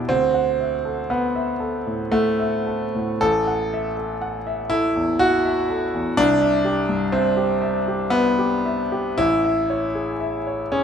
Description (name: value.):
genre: classical, impressionist solo piano.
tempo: 59 BPM.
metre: 3/4.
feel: uneven beats, rubato.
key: unclear.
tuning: A4 = 440 Hz.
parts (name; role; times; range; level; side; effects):
clear grand piano; solo; 0.0-10.8 s; A1 to F#5; -19 LUFS; equal; none.
room: moderate large studio reverb, RT60 1.4 s.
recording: minimal, uncompressed stereo recording.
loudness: -19 LUFS.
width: side -7 dB against mid.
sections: 0.0-10.8 A section.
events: none.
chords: 0.1 D69; 3.2 A5; 6.2 Cmaj7; 9.2 Amaj7.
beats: | 0.09 1.10 2.11 | 3.20 4.21 5.19 | 6.18 7.13 8.13 | 9.19 10.20.